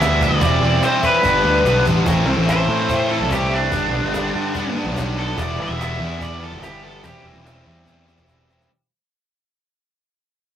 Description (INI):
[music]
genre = indie rock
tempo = 145 BPM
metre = 4/4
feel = straight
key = A minor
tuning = A4 = 444 Hz
[part]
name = cranked stack guitar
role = melody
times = 0.0-7.2 s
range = D4 to E5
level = -21 LUFS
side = equal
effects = overdrive
[part]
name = distorted electric guitar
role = riff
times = 0.0-8.7 s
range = G2 to E4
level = -21 LUFS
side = equal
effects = overdrive
[part]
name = fuzz picked electric bass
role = bass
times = 0.0-8.7 s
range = E1 to A2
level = -22 LUFS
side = equal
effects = overdrive
[part]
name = cajon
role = drums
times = 0.0-8.7 s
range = none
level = -27 LUFS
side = equal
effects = none
[sound]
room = moderate studio reverb, RT60 0.5 s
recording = rough rehearsal-room recording, warm saturation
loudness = -16 LUFS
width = side -10 dB against mid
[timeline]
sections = 0.0-2.1 A section; 2.1-8.7 B section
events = fade-out 2.1-8.7; overdriven electric guitar solo 2.1-8.7; drum fill 7.9-8.7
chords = 0.4 C/E; 1.2 G; 2.1 Am; 3.7 G; 5.4 Em; 7.0 C/E